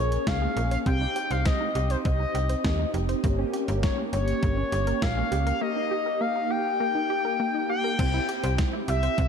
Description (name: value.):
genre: synth-pop.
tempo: 101 BPM.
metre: 4/4.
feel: straight.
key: unclear.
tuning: A4 = 440 Hz.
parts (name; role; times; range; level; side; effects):
expressive portamento lead; melody; 0.0-9.3 s; C5 to G5; -28 LUFS; left 3 dB; chorus, phaser, digital delay, shimmer reverb.
mellow synth brass; accompaniment; 0.0-9.3 s; Bb3 to Ab4; -31 LUFS; right 1 dB; chorus, phaser, shimmer reverb.
wide unison pluck; arpeggios; 0.0-9.3 s; Bb3 to Db5; -34 LUFS; right 2 dB; auto-pan, digital delay, shimmer reverb.
slap-like FM bass; bass; 0.0-9.3 s; F1 to Eb2; -27 LUFS; equal; none.
clean 12-bit digital drum machine; drums; 0.1-9.3 s; crash cymbal, hi-hat, kick drum, snare drum; -29 LUFS; equal; overdrive.
room: moderate lush hall reverb, RT60 2.4 s.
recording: dark, warm production.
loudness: -23 LUFS.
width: side -7 dB against mid.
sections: 0.0-8.0 A section; 8.0-9.3 B section.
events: none.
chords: 0.0 Bbm7; 0.9 Cm; 3.2 Gdim; 5.6 Eb; 8.0 C.